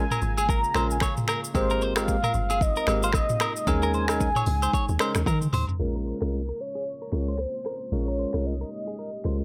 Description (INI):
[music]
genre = afrobeats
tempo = 113 BPM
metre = 4/4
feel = swing 58% on 16ths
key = unclear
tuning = A4 = 440 Hz
[part]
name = warm velvety synth lead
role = melody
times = 0.0-9.4 s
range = Bb4 to Bb5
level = -32 LUFS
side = equal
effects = chorus, delay
[part]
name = barky tine electric piano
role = accompaniment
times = 0.0-9.4 s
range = Ab3 to Bb4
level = -32 LUFS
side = equal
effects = none
[part]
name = deep dark ambient pad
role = sustained chords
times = 0.1-9.4 s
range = C3 to G4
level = -41 LUFS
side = equal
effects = chorus, built-in reverb
[part]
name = deep log drum bass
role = bass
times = 0.0-9.4 s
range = G1 to Eb3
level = -30 LUFS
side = equal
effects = none
[part]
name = clean electric guitar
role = riff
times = 0.1-9.4 s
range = Ab4 to Db5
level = -35 LUFS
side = equal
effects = delay
[part]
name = afro-pop drum kit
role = drums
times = 0.1-9.4 s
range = finger snaps, hi-hat, kick drum, rim click, shaker, toms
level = -30 LUFS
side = equal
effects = none
[part]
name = agogo bells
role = percussion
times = 0.1-5.7 s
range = none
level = -36 LUFS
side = equal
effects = none
[sound]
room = little or no reverb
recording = low-pass filter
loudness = -26 LUFS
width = mono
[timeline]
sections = 0.0-5.8 A section; 5.8-9.4 B section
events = drum fill 5.3-5.8; filter sweep 5.8-9.4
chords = 0.0 Bbm7; 1.5 Abmaj9; 3.7 Eb7sus4; 5.8 Bbm7